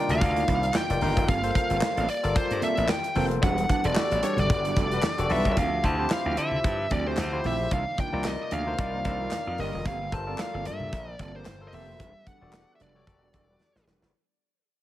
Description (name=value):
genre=early-eighties boogie funk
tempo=112 BPM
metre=4/4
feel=swing 56% on 16ths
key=unclear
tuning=A4 = 440 Hz
part: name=high-gain lead guitar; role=melody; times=0.0-13.8 s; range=C5 to A5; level=-29 LUFS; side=equal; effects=distortion
part: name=barky tine electric piano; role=accompaniment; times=0.0-14.1 s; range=Eb4 to F5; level=-33 LUFS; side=left 3 dB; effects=overdrive
part: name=warm analog pad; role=sustained chords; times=0.0-14.1 s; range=C3 to F#5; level=-38 LUFS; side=left 1 dB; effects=none
part: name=mellow electric guitar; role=riff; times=0.0-14.1 s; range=Eb3 to B4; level=-34 LUFS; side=right 6 dB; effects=wide subtle chorus
part: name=gritty slap bass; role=bass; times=0.1-14.1 s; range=E1 to D3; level=-30 LUFS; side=equal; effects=overdrive
part: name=modern studio drum kit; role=drums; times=0.1-14.1 s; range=handclaps, hi-hat, kick drum, snare drum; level=-29 LUFS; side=equal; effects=gated reverb
part: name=congas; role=percussion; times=0.1-14.1 s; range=none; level=-37 LUFS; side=left 2 dB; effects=none
part: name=analog synth brass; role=second line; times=4.9-14.1 s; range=F3 to C5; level=-36 LUFS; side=left 2 dB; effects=chorus
room=light reverb, studio reverb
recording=none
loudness=-24 LUFS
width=side -14 dB against mid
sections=0.0-5.6 A section; 5.6-14.1 B section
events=band accent 3.4-5.6; fade-out 5.6-14.1; drum fill 13.6-14.1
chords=0.0 Cm11; 1.3 Gm11; 3.4 Em11; 5.6 Dm11; 7.7 Cm11; 9.9 Gm11; 12.0 Em11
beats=0.21 0.75 | 1.28 1.82 2.35 2.89 | 3.43 3.96 4.50 5.03 | 5.57 6.11 6.64 7.18 | 7.71 8.25 8.78 9.32 | 9.86 10.39 10.93 11.46 | 12.00 12.53 13.07 13.61